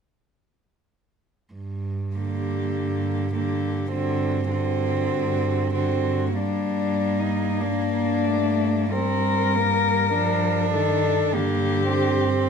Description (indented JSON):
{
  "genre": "classical, lyrical piece for cello ensemble",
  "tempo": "44-53 BPM",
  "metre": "4/4",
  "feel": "rubato",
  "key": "G minor",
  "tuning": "A4 = 442 Hz",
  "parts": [
    { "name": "dark cello", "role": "bass", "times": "1.5-12.5 s", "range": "G2", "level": "-27 LUFS", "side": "right 3 dB", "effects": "none" },
    { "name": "dark cello", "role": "melody", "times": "2.2-12.5 s", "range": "D4 to Bb4", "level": "-26 LUFS", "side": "left 8 dB", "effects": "none" },
    { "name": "warm cello", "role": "second line", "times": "2.2-12.5 s", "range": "Bb3 to D4", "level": "-26 LUFS", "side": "right 7 dB", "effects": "none" },
    { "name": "warm cello", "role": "accompaniment", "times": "2.2-12.5 s", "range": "D3 to Bb3", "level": "-27 LUFS", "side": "left 2 dB", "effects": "none" }
  ],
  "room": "moderate recital hall reverb, RT60 1.4 s",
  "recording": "minimal, uncompressed stereo recording",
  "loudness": "-21 LUFS",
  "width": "side -6 dB against mid",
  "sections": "1.5-6.4 A section; 6.4-12.5 B section",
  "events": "none",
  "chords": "1.5 Gm; 11.3 Bb/G"
}